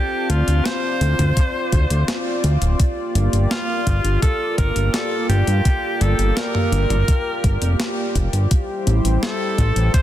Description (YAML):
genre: synthwave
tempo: 84 BPM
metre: 4/4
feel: straight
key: unclear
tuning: A4 = 440 Hz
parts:
  - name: edgy alto saxophone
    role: melody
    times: 0.0-10.0 s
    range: F4 to C5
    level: -24 LUFS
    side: equal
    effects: digital delay
  - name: warm analog pad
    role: sustained chords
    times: 0.0-10.0 s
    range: G3 to A5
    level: -25 LUFS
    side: equal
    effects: chorus, sidechain pumping
  - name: fat analog bass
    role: bass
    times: 0.3-9.9 s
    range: D1 to G2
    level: -17 LUFS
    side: equal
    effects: tube saturation
  - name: clean 12-bit digital drum machine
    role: drums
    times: 0.3-10.0 s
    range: hi-hat, snare drum, toms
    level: -26 LUFS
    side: left 1 dB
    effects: none
  - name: electronic kick drum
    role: drums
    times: 1.4-10.0 s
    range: none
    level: -18 LUFS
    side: equal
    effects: none
room: light reverb, digital ambience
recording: dense, heavily limited modern master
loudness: -17 LUFS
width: side -12 dB against mid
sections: 0.0-10.0 A section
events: none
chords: 0.0 Dm7; 2.8 Gm7; 8.5 Am7